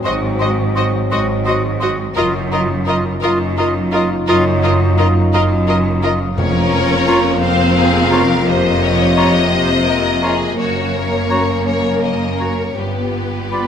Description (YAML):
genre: cinematic, emotional film score for orchestra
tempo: 57 BPM (dotted quarters)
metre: 6/8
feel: rubato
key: Bb minor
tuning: A4 = 440 Hz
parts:
  - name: bright clarinet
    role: second line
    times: 0.0-13.7 s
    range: F4 to Gb4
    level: -23 LUFS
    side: right 1 dB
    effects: none
  - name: hollow concert flute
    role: second line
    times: 0.0-13.7 s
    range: Bb5 to C6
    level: -26 LUFS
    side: left 1 dB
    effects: none
  - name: warm symphonic violin section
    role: second line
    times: 0.0-13.7 s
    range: Gb4 to Db5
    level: -24 LUFS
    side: left 2 dB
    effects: none
  - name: dark French horn section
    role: sustained chords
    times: 0.0-13.7 s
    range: Gb3 to F4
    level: -22 LUFS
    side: left 3 dB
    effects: none
  - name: concert harp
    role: arpeggios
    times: 0.0-13.7 s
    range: F2 to C6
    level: -26 LUFS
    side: left 9 dB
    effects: none
  - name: clear symphonic cello section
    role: bass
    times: 0.0-13.7 s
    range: F2 to Ab2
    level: -21 LUFS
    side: right 2 dB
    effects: none
  - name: dark symphonic double bass section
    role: bass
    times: 0.0-13.7 s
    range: F1 to Ab1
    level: -21 LUFS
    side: right 3 dB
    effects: none
  - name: warm symphonic violin section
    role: melody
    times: 0.1-13.7 s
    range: B4 to F5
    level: -22 LUFS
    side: left 5 dB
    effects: none
  - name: warm oboe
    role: second line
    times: 0.1-13.7 s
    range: Db5 to Eb5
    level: -24 LUFS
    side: right 1 dB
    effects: none
  - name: warm symphonic viola section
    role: accompaniment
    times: 0.1-13.7 s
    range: C3 to Gb4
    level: -22 LUFS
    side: equal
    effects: none
  - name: timpani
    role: percussion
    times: 6.4-7.4 s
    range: F2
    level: -24 LUFS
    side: right 1 dB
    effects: none
room: moderate scoring stage reverb, RT60 1.5 s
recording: none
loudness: -13 LUFS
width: side -8 dB against mid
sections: 0.0-13.7 A section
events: none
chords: 0.0 Ab7; 2.2 Ebmadd9/Gb; 6.4 Bbmadd9/F; 10.6 Gb; 12.8 G7